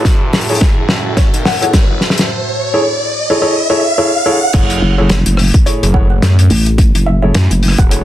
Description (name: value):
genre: glitch hop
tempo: 107 BPM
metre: 4/4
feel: swing 57% on 16ths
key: F# minor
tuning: A4 = 440 Hz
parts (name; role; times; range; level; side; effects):
- warbly tape-like pad; sustained chords; 0.0-8.0 s; A2 to F#4; -24 LUFS; equal; chorus, built-in reverb, sidechain pumping
- phased detuned saw bass; bass; 0.0-8.0 s; E1 to F#2; -15 LUFS; equal; phaser, high-pass filter
- warm soul drum kit; drums; 0.0-8.0 s; crash cymbal, hi-hat, rim click, snare drum; -16 LUFS; left 1 dB; soft clipping on snare
- riser; sound effects; 0.0-4.5 s; none; -17 LUFS; right 1 dB; none
- airy breathy pad; texture; 0.0-2.3 s; F#4 to A5; -28 LUFS; right 2 dB; chorus, sidechain pumping
- electronic kick drum; drums; 0.1-7.9 s; none; -11 LUFS; equal; none
- dark grand piano; stabs; 0.5-8.0 s; E4 to C#5; -16 LUFS; left 1 dB; sidechain pumping, low-pass filter, ping-pong delay
- woody wave-folded pluck; melody; 1.2-1.7, 5.7-8.0 s; C#5 to F#5; -22 LUFS; left 2 dB; lush chorus, ping-pong delay
- vowel-sweep wobble bass; bass; 4.8-7.8 s; F#1 to A1; -11 LUFS; equal; chorus
room: moderate studio reverb, RT60 0.5 s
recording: dense, heavily limited modern master, vinyl crackle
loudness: -10 LUFS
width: side -13 dB against mid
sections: 0.0-4.5 A section; 4.5-8.0 B section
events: build-up 0.0-4.5; drum fill 0.0-2.3; riser 0.0-4.5; drop 4.5-8.0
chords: 0.0 F#m9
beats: | 0.05 0.61 1.18 1.74 | 2.30 2.86 3.42 3.98 | 4.54 5.10 5.66 6.22 | 6.78 7.34 7.90